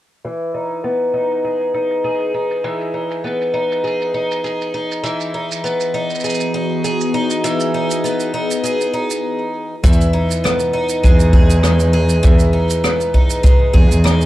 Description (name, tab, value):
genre	folktronica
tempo	100 BPM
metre	4/4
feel	straight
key	E major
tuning	A4 = 443 Hz
part	picked twelve-string acoustic guitar	arpeggios	0.2-14.3 s	E3 to G#4	-18 LUFS	equal	low-pass filter, digital delay
part	shaker and rim click	drums	0.3-14.3 s	none	-25 LUFS	right 2 dB	low-pass filter on snare, low-pass filter on perc, low-pass filter on room
part	warbly tape-like pad	sustained chords	5.6-9.2 s	E3 to G#4	-23 LUFS	left 1 dB	chorus, built-in reverb, vintage 12-bit sampler grit
part	dark cello	bass	9.8-14.3 s	E2	-15 LUFS	equal	none
part	kick drum	drums	9.8-13.9 s	none	-12 LUFS	equal	none
room	light reverb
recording	dark, warm production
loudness	-14 LUFS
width	side -15 dB against mid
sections	0.2-9.8 A section; 9.8-14.3 B section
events	filter sweep on drum 0.2-9.8; filter sweep on twelve-string acoustic guitar 0.2-9.8; stop 9.2-9.8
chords	0.2 Emaj7